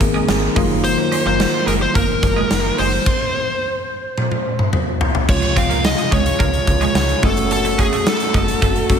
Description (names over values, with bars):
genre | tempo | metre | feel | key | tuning
1980s-style pop | 108 BPM | 4/4 | straight | Db major | A4 = 439 Hz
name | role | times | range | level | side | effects
mellow tine electric piano | accompaniment | 0.0-9.0 s | C3 to Ab4 | -22 LUFS | left 1 dB | slow stereo tremolo, slapback echo
warm French horn section | sustained chords | 0.0-9.0 s | C3 to Bb4 | -29 LUFS | left 1 dB | stereo widening
twelve-string electric guitar | riff | 0.0-8.9 s | Ab3 to Db4 | -26 LUFS | right 7 dB | lush chorus, slapback echo
slap-like FM bass | bass | 0.0-9.0 s | Gb1 to Db2 | -23 LUFS | equal | none
big rock drum kit | drums | 0.0-9.0 s | crash cymbal, hi-hat, kick drum, snare drum, tambourine, toms | -18 LUFS | equal | none
smooth overdriven lead guitar | melody | 0.8-9.0 s | Ab4 to F5 | -20 LUFS | equal | slapback echo
room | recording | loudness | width
moderate lush hall reverb, RT60 2.3 s | big arena sound | -15 LUFS | side -7 dB against mid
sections
0.0-5.3 A section; 5.3-9.0 B section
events
stop 3.1-5.3; drum fill 4.2-5.3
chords
0.0 Abadd9; 0.6 Ebmadd9/Gb; 3.1 N.C.; 5.3 Dbmaj7; 7.2 Gbm